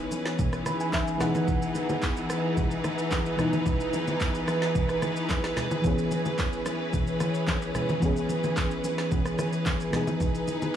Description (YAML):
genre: amapiano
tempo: 110 BPM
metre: 4/4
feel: straight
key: C# minor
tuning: A4 = 441 Hz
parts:
  - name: mellow FM electric piano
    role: accompaniment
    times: 0.0-10.8 s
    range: E3 to B5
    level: -30 LUFS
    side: left 1 dB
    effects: chorus
  - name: warm studio string section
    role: sustained chords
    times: 0.0-10.8 s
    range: E3 to B4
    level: -30 LUFS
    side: right 1 dB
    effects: sidechain pumping
  - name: deep house drum kit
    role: drums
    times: 0.1-10.7 s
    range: handclaps, kick drum, rim click, shaker, snare drum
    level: -30 LUFS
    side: right 1 dB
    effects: none
  - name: bongos and congas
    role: percussion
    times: 0.1-10.7 s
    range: none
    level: -32 LUFS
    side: left 1 dB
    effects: none
room: studio ambience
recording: dry, gritty hardware recording, cassette tape, studio reverb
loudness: -25 LUFS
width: side -10 dB against mid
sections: 0.0-10.8 A section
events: FM electric piano fill 0.4-1.5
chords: 0.0 C#m7; 1.2 Emaj7; 5.8 C#m7; 9.9 Emaj7